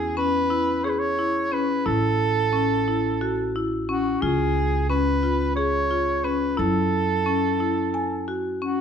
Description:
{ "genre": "contemporary instrumental, chamber music in an uneven meter", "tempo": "178 BPM (eighths)", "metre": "7/8", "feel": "straight", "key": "F# minor", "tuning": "A4 = 441 Hz", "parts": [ { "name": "mellow soprano saxophone", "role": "melody", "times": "0.0-8.8 s", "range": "F#4 to C#5", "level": "-25 LUFS", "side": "right 4 dB", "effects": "none" }, { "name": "marimba with medium hard mallets", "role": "arpeggios", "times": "0.0-8.8 s", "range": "C#4 to G#5", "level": "-24 LUFS", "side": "left 4 dB", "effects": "none" }, { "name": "upright bass", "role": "bass", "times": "0.0-8.8 s", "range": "A1 to F#2", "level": "-28 LUFS", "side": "right 1 dB", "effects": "none" } ], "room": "moderate recital hall reverb, RT60 1.4 s", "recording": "minimal, uncompressed stereo recording", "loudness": "-21 LUFS", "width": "side -7 dB against mid", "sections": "0.0-8.8 A section", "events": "none", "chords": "0.0 E6; 1.9 A; 4.2 C#; 6.6 F#m7" }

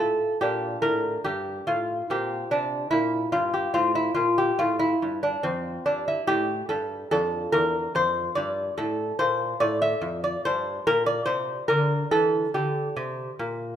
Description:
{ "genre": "classical, baroque-style dance for lute", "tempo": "72 BPM", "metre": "4/4", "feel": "rubato", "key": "F major, D minor from 7.1 s", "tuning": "A4 = 437 Hz", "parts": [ { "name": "lute", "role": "solo", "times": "0.0-13.8 s", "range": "E2 to E5", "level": "-23 LUFS", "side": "equal", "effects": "none" } ], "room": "moderate recital hall reverb, RT60 1.7 s", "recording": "minimal, uncompressed stereo recording", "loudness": "-23 LUFS", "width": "side -9 dB against mid", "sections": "0.0-13.8 A section", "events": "none", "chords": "0.4 Gm; 2.1 C5/Bb; 3.8 F; 7.1 Dm; 10.4 Em7b5/G (rootless)" }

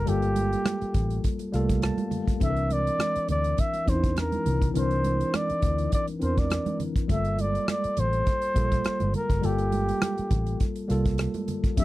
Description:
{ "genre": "lush 1970s-style soul", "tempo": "102 BPM", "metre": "4/4", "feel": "swing 54% on 16ths", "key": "G dorian", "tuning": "A4 = 442 Hz", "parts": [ { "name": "breathy flugelhorn", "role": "melody", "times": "0.0-11.8 s", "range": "G4 to E5", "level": "-28 LUFS", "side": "equal", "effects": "none" }, { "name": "mellow tine electric piano", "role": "accompaniment", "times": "0.0-11.8 s", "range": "E3 to A5", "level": "-30 LUFS", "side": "moving between left 5 dB and right 4 dB", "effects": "overdrive, auto-pan" }, { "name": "vintage muted fingered electric bass", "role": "bass", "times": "0.0-11.8 s", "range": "F#1 to E2", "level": "-28 LUFS", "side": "equal", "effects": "none" }, { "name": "modern studio drum kit", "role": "drums", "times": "0.1-11.8 s", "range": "hi-hat, kick drum, rim click", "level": "-27 LUFS", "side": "equal", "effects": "none" }, { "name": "congas", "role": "percussion", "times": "0.1-11.8 s", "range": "none", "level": "-35 LUFS", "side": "right 5 dB", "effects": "none" } ], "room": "little or no reverb", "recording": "dry, close 1970s-style studio recording", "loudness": "-23 LUFS", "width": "side -17 dB against mid", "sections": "0.0-11.8 A section", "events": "tine electric piano fill 1.2-2.4", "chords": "0.0 Gm9; 2.4 C9; 7.1 Gm9" }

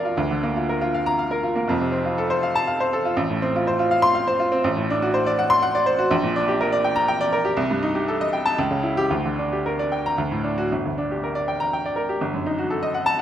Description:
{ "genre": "classical, virtuoso piano study", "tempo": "121 BPM", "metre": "3/4", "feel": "rubato", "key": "G minor from 4.7 s", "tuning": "A4 = 439 Hz", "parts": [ { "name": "bright baby grand piano", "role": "solo", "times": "0.0-13.2 s", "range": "F1 to D6", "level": "-20 LUFS", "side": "equal", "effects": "none" } ], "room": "moderate scoring stage reverb, RT60 2.0 s", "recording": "none", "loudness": "-20 LUFS", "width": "side -10 dB against mid", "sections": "0.0-10.7 A section; 10.7-13.2 B section", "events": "none", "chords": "0.2 Bb/D; 1.7 F; 3.2 F/A; 4.7 D7/A; 6.1 Gm/Bb; 7.6 Am7b5/C; 8.6 C#dim; 9.1 Gm/D; 10.2 D; 10.7 Gm; 12.2 Gsus2" }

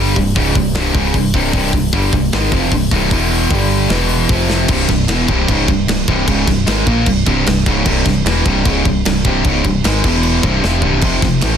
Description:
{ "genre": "heavy metal", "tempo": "152 BPM", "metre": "4/4", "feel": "straight", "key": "unclear", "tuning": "A4 = 438 Hz", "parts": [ { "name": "high-gain distorted guitar", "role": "riff", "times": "0.0-11.6 s", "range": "C2 to Bb3", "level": "-18 LUFS", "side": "right 13 dB", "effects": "distortion" }, { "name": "tight distorted guitar", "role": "riff", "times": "0.0-11.6 s", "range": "C2 to Bb3", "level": "-18 LUFS", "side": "left 10 dB", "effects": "distortion" }, { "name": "plucky analog bass", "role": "bass", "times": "0.0-11.6 s", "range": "C1 to Bb1", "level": "-18 LUFS", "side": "equal", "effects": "none" }, { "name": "tight metal drum kit", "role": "drums", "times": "0.2-11.5 s", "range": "crash cymbal, hi-hat, kick drum, snare drum, toms", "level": "-18 LUFS", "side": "equal", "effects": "soft clipping on kick, soft clipping on snare" } ], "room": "little or no reverb", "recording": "dense, heavily limited modern master", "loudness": "-12 LUFS", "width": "side -8 dB against mid", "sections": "0.0-4.7 A section; 4.7-11.6 B section", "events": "half time 0.0-4.7; drum fill 4.5, 10.6-11.0", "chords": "0.0 C5; 3.1 E5; 3.5 G5; 3.9 E5; 4.3 F5; 4.7 C; 10.0 E5; 10.4 C5; 11.0 F5" }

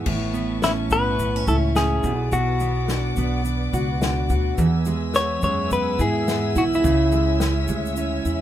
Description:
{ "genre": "acoustic pop", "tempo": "106 BPM", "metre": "4/4", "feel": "swing 60% on 16ths", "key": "A major", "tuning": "A4 = 440 Hz", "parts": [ { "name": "fingerpicked steel-string acoustic guitar", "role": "accompaniment", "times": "0.0-8.4 s", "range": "E2 to G#4", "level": "-23 LUFS", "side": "right 2 dB", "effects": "none" }, { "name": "warm studio string section", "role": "sustained chords", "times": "0.0-8.4 s", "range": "B4 to E6", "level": "-32 LUFS", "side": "left 2 dB", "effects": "none" }, { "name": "upright bass", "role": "bass", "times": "0.0-8.4 s", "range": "A1 to G#2", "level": "-25 LUFS", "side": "left 1 dB", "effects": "none" }, { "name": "unplugged drum kit", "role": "drums", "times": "0.1-8.4 s", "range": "crash cymbal, kick drum, shaker, snare drum", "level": "-29 LUFS", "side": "left 2 dB", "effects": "none" }, { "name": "direct-recorded clean electric guitar", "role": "melody", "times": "0.6-8.4 s", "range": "E4 to C#5", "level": "-24 LUFS", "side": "left 2 dB", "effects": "none" } ], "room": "little or no reverb", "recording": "minimal, uncompressed stereo recording", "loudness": "-19 LUFS", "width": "side -11 dB against mid", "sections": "0.1-8.4 A section", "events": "none", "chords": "0.1 Aadd9; 2.0 Bm; 4.6 E; 6.8 C#m" }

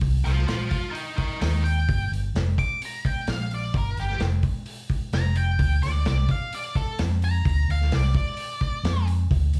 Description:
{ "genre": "blues rock power trio and southern rock", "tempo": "129 BPM", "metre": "4/4", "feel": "straight", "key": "unclear", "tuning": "A4 = 440 Hz", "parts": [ { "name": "vintage muted fingered electric bass", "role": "bass", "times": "0.0-9.6 s", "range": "F1 to F2", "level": "-25 LUFS", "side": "equal", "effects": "none" }, { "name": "vintage drum kit", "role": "drums", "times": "0.0-9.6 s", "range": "hi-hat, kick drum, snare drum", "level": "-30 LUFS", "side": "equal", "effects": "none" }, { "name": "octave-fuzz lead guitar", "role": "melody", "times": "0.3-9.1 s", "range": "G4 to D6", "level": "-33 LUFS", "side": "equal", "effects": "distortion, slapback echo" } ], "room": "little or no reverb", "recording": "live gig heard through the venue's PA, club ambience", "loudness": "-25 LUFS", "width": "mono", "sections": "0.0-9.6 A section", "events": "lead electric guitar solo 0.0-9.6", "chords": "0.0 Eb6/Bb; 1.9 Fsus24; 5.6 Csus4" }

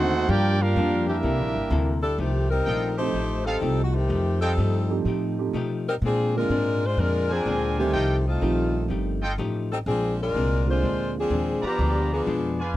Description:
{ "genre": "jazz", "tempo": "125 BPM", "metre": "4/4", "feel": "swing 68% on 8ths", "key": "F mixolydian", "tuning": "A4 = 440 Hz", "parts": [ { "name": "warm trumpet section", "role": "melody", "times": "0.0-2.0 s", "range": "D4 to G5", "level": "-26 LUFS", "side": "right 2 dB", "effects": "none" }, { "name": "brilliant trombone section", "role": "second line", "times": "0.0-2.0 s", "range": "G3 to G4", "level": "-27 LUFS", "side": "right 3 dB", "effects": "none" }, { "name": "archtop guitar, miked and amplified", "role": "accompaniment", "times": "0.0-12.8 s", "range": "G2 to A4", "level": "-30 LUFS", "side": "left 4 dB", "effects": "none" }, { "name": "bright trombone section", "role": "sustained chords", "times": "0.0-1.2 s", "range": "D3 to G4", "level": "-32 LUFS", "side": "left 1 dB", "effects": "none" }, { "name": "upright bass", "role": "bass", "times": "0.0-12.8 s", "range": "G1 to B2", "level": "-26 LUFS", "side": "equal", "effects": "none" }, { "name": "warm saxophone section", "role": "melody", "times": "2.0-12.7 s", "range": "Eb3 to C5", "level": "-26 LUFS", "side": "left 2 dB", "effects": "none" }, { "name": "clear trumpet section", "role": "stabs", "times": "2.7-12.8 s", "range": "D4 to Bb5", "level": "-29 LUFS", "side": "right 2 dB", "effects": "none" }, { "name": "dark concert grand piano", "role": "accompaniment", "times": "3.0-11.3 s", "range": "D3 to G4", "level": "-29 LUFS", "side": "right 7 dB", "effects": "none" } ], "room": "little or no reverb", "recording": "dry, close 1970s-style studio recording", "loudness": "-22 LUFS", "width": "side -14 dB against mid", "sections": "0.0-2.2 A section; 2.2-12.8 B section", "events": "none", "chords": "0.3 Gm7; 1.2 C13; 2.2 F9; 6.0 Bb9; 7.9 F9; 9.9 Bb9; 11.8 Bdim7" }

